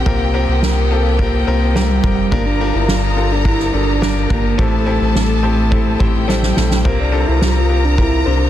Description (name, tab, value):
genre	piano-driven pop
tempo	106 BPM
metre	4/4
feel	straight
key	C mixolydian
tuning	A4 = 440 Hz
part	mellow horn-like synth lead	melody	0.0-8.5 s	G3 to F4	-20 LUFS	equal	chorus
part	warm symphonic violin section	second line	0.0-8.5 s	G4 to Bb5	-24 LUFS	equal	none
part	clear concert grand piano	accompaniment	0.0-8.5 s	G2 to C5	-22 LUFS	left 5 dB	none
part	round analog bass	bass	0.0-8.5 s	F1 to C2	-17 LUFS	equal	none
part	soft-mallet drum kit	drums	0.1-8.4 s	crash cymbal, kick drum, ride cymbal, snare drum	-19 LUFS	equal	none
room	small room reverb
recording	dense, heavily limited modern master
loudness	-13 LUFS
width	side -12 dB against mid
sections	0.0-8.5 A section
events	drum fill 6.3-6.9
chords	0.0 C7sus4; 2.3 Gm7; 4.6 Am7; 6.9 C7sus4